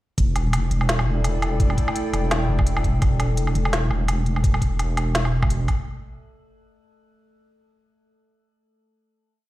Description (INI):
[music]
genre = half-time drum and bass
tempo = 169 BPM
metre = 4/4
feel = swing 56% on 16ths, half-time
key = E minor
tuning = A4 = 440 Hz
[part]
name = dark analog pad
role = sustained chords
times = 0.7-4.4 s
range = E4 to G5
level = -31 LUFS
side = equal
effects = chorus, sidechain pumping
[part]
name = deep soft wobble bass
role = bass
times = 0.2-5.7 s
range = E1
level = -22 LUFS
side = equal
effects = chorus
[part]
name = electronic kick drum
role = drums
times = 0.2-5.8 s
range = none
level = -21 LUFS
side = equal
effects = none
[part]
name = organic electronic drum kit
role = drums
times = 0.2-5.8 s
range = hi-hat, snare drum, woodblock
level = -27 LUFS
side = equal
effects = overdrive
[part]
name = metallic inharmonic drone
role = texture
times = 0.5-4.4 s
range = A3 to A4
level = -36 LUFS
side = left 2 dB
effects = chorus, built-in reverb
[sound]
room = light reverb, digital ambience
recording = played on a big sound system in a bare room, large studio reverb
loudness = -19 LUFS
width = side -16 dB against mid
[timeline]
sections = 0.2-5.9 drop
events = drop 0.2-5.9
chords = 0.2 Em